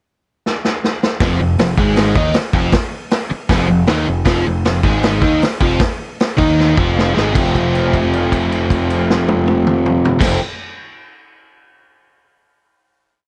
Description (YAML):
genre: garage rock duo or trio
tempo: 156 BPM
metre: 4/4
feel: straight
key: F major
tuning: A4 = 439 Hz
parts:
  - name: vintage drum kit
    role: drums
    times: 0.5-10.3 s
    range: crash cymbal, hi-hat, kick drum, snare drum, toms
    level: -20 LUFS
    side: equal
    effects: none
  - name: biting overdriven guitar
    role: riff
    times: 1.2-10.4 s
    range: F2 to Eb4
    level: -18 LUFS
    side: equal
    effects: none
  - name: overdriven picked electric bass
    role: bass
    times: 1.2-10.4 s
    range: F1 to Eb2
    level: -22 LUFS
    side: equal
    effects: none
room: moderate club reverb, RT60 0.6 s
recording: none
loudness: -15 LUFS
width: mono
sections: 0.0-1.2 pickup bar; 1.2-7.3 riff; 7.3-10.4 final chord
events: drum fill 0.4-1.2, 6.6-7.3; held note 7.3-10.2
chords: 0.0 N.C.; 1.2 Fm7; 7.3 F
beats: 0.06 0.44 0.82 | 1.20 1.58 1.96 2.34 | 2.72 3.10 3.49 3.87 | 4.25 4.64 5.03 5.41 | 5.80 6.18 6.57 6.96 | 7.34 7.73 8.12 8.51 | 8.89 9.28 9.66 10.05